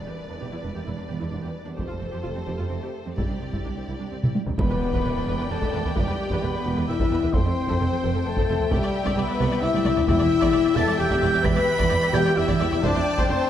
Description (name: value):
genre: cinematic, epic orchestral film score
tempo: 131 BPM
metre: 3/4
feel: straight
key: E phrygian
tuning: A4 = 440 Hz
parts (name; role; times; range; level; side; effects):
- rich symphonic violin section; melody; 0.0-13.5 s; C5 to A5; -37 LUFS; left 3 dB; none
- warm symphonic violin section; second line; 0.0-13.5 s; G4 to B5; -34 LUFS; left 3 dB; none
- dark French horn section; sustained chords; 0.0-13.5 s; G3 to B4; -26 LUFS; left 4 dB; none
- impact; sound effects; 0.0-0.4, 4.6-6.0 s; none; -36 LUFS; right 1 dB; none
- warm studio viola section; accompaniment; 0.1-13.5 s; C4 to G5; -33 LUFS; right 1 dB; none
- rich symphonic cello section; bass; 0.1-13.5 s; C2 to F2; -30 LUFS; right 3 dB; none
- rich symphonic double bass section; bass; 0.4-13.3 s; E1 to C2; -29 LUFS; right 3 dB; none
- taiko ensemble; drums; 1.8-13.5 s; none; -27 LUFS; equal; none
- concert flute; second line; 4.6-13.5 s; G5 to B6; -30 LUFS; equal; none
- timpani; percussion; 10.1-10.7 s; E2; -30 LUFS; equal; none
room: moderate scoring stage reverb, RT60 2.0 s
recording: none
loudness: -21 LUFS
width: side -10 dB against mid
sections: 0.0-4.6 A section; 4.6-13.5 B section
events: impact 0.0-0.4, 4.6-6.0; drum fill 4.2-4.6, 9.7-10.1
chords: 0.0 Em7; 1.8 Fadd9; 3.2 Cadd9; 4.6 Em7; 7.3 Fadd9; 8.7 Cadd9; 10.1 Em7; 12.8 Fadd9